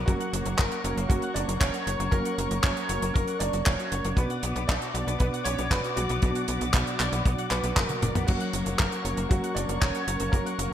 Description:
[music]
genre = italo disco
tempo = 117 BPM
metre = 4/4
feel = straight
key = B harmonic minor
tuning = A4 = 441 Hz
[part]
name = clear baby grand piano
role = melody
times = 0.0-10.7 s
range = F#3 to D5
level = -32 LUFS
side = right 1 dB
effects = digital delay
[part]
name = muted chamber string section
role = sustained chords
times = 0.0-10.7 s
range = F#4 to D6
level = -35 LUFS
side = left 4 dB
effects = none
[part]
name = direct-recorded clean electric guitar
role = arpeggios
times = 0.0-10.7 s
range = A#3 to F#5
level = -38 LUFS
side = left 3 dB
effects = ensemble chorus, ping-pong delay
[part]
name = mellow tine electric piano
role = stabs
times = 0.0-10.7 s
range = B2 to D5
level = -34 LUFS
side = right 2 dB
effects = medium tremolo
[part]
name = tight sequencer bass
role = bass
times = 0.0-10.7 s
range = E1 to B1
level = -31 LUFS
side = equal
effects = tube saturation
[part]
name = damped 70s drum kit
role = drums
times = 0.1-10.7 s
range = crash cymbal, handclaps, hi-hat, toms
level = -31 LUFS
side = equal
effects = studio reverb, gated reverb
[part]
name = kick drum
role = drums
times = 0.1-10.4 s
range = none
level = -25 LUFS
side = equal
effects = studio reverb
[sound]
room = light reverb, small room ambience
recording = bright 1980s-style digital production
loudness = -24 LUFS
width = side -10 dB against mid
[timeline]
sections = 0.0-10.7 A section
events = drum fill 7.9-8.3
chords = 0.1 F#; 4.2 Bm; 8.3 F#

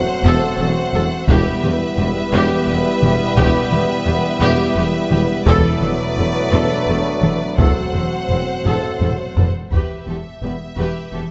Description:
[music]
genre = cinematic, epic orchestral film score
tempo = 57 BPM (dotted quarters)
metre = 6/8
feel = straight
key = E minor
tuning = A4 = 440 Hz
[part]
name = rich studio violin section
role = melody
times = 0.0-11.3 s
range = D5 to F#5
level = -30 LUFS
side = equal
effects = none
[part]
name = rich studio violin section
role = second line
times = 0.0-11.2 s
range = A4 to C5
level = -28 LUFS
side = equal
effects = none
[part]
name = bright trombone section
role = sustained chords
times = 0.0-9.4 s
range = F#3 to B3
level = -26 LUFS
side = equal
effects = none
[part]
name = warm French horn section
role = sustained chords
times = 0.0-10.6 s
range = G3 to F#4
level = -27 LUFS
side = equal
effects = none
[part]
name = mellow tuba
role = bass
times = 0.0-9.5 s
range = E1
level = -26 LUFS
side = equal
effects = none
[part]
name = clear symphonic double bass section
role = bass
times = 0.2-11.2 s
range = E1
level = -26 LUFS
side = equal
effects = none
[part]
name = rich symphonic cello section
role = bass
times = 0.2-11.2 s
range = E2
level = -24 LUFS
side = equal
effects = none
[part]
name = warm studio viola section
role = accompaniment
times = 0.3-11.2 s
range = G4 to A4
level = -27 LUFS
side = equal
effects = none
[part]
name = taiko ensemble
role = drums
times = 0.9-11.1 s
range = none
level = -22 LUFS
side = equal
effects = none
[part]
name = timpani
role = percussion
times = 5.5-6.5 s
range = E2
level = -27 LUFS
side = equal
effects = none
[sound]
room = moderate scoring stage reverb, RT60 2.0 s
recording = nothing above 7.9 kHz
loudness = -17 LUFS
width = mono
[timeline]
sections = 0.0-9.7 A section; 9.7-11.3 B section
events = drum fill 8.7-9.7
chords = 0.0 F#dim/E; 1.3 Em; 5.5 Bm7/E; 7.6 F#dim/E; 9.7 Em

